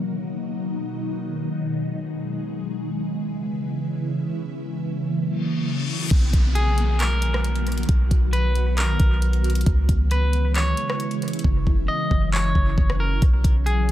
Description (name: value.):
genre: hip hop, atmospheric cloud-rap.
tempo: 135 BPM.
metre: 4/4.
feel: half-time.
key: B major.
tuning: A4 = 441 Hz.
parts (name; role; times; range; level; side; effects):
ethereal airy pad; sustained chords; 0.0-13.9 s; B2 to F#4; -26 LUFS; equal; ensemble chorus, built-in reverb, phaser, sidechain pumping.
reverse cymbal and downlifter; sound effects; 5.4-9.7 s; none; -33 LUFS; left 2 dB; none.
clean 808-style bass; bass; 6.1-13.9 s; F#1 to C#2; -20 LUFS; equal; none.
smooth R&B drum kit; drums; 6.1-13.9 s; crash cymbal, handclaps, hi-hat, kick drum, rim click; -23 LUFS; equal; none.
electric guitar at the edge of break-up; melody; 6.6-13.9 s; G#4 to D#5; -28 LUFS; left 1 dB; analog delay.
room: little or no reverb.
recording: echo-heavy mix.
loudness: -20 LUFS.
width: side -13 dB against mid.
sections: 0.0-6.1 A section; 6.1-13.9 B section.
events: reverse cymbal 5.4-6.1; hi-hats muted 11.4-13.2.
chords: 0.0 Bmaj7; 2.6 C#m7; 4.3 F#7; 6.1 Bmaj7; 9.7 C#m7; 11.4 F#5; 13.2 B.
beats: 0.33 | 0.78 1.22 1.67 2.11 | 2.56 3.00 3.44 3.89 | 4.33 4.78 5.22 5.67 | 6.11 6.55 7.00 7.44 | 7.89 8.33 8.78 9.22 | 9.67 10.11 10.55 11.00 | 11.44 11.89 12.33 12.78 | 13.22 13.67.